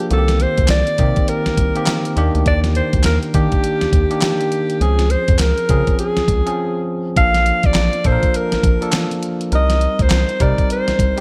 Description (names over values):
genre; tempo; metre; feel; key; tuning
R&B, new jack swing; 102 BPM; 4/4; swing 61% on 16ths; unclear; A4 = 440 Hz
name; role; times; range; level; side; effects
breathy alto saxophone; melody; 0.0-11.2 s; G4 to F5; -22 LUFS; equal; slapback echo
bell-like tine electric piano; accompaniment; 0.0-11.2 s; Eb3 to A5; -24 LUFS; equal; none
round analog bass; bass; 0.1-11.1 s; A1 to Eb3; -20 LUFS; equal; none
clean 12-bit digital drum machine; drums; 0.1-11.2 s; handclaps, hi-hat, kick drum, snare drum; -21 LUFS; equal; gated reverb
room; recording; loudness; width
light reverb; none; -17 LUFS; mono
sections
0.0-11.2 A section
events
break 6.6-7.2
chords
0.1 Cm7; 2.2 Ebmaj7; 4.8 Dbmaj7; 7.2 Bbmaj7; 9.5 Cm7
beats
| 0.11 0.69 1.28 1.87 | 2.46 3.05 3.64 4.22 | 4.81 5.40 5.99 6.58 | 7.17 7.75 8.34 8.93 | 9.52 10.11 10.70